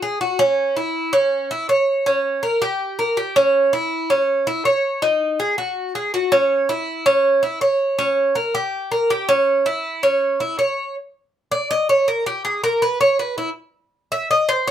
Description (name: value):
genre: latin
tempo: 162 BPM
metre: 4/4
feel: straight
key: unclear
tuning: A4 = 436 Hz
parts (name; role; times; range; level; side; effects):
- Cuban tres; solo; 0.0-14.7 s; C#4 to E5; -17 LUFS; right 1 dB; none
room: light reverb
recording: none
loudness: -17 LUFS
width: side -10 dB against mid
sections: 0.0-11.0 A section; 11.0-14.7 B section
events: Cuban tres solo 11.0-14.7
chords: none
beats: 0.21 | 0.58 0.95 1.32 1.69 | 2.06 2.43 2.80 3.17 | 3.54 3.91 4.28 4.65 | 5.02 5.39 5.76 6.13 | 6.50 6.88 7.25 7.62 | 7.99 8.36 8.73 9.10 | 9.47 9.84 10.21 10.59 | 10.96 11.33 11.70 12.07 | 12.44 12.81 13.19 13.56 | 13.93 14.30 14.67